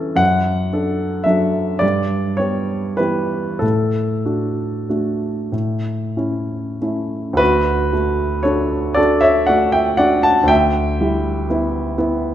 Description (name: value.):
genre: classical, romantic nocturne for solo piano.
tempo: 31-44 BPM (dotted quarters).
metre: 6/8.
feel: rubato.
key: D major.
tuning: A4 = 440 Hz.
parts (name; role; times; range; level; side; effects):
warm grand piano; solo; 0.0-12.3 s; D2 to A5; -16 LUFS; equal; none.
room: moderate recital hall reverb, RT60 1.6 s.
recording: none.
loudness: -16 LUFS.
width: side -11 dB against mid.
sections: 0.0-7.4 A section; 7.4-12.3 B section.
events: none.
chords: 0.2 D/F#; 1.8 Em/G; 3.6 D/A; 5.5 A; 7.4 D; 10.5 Em7/D.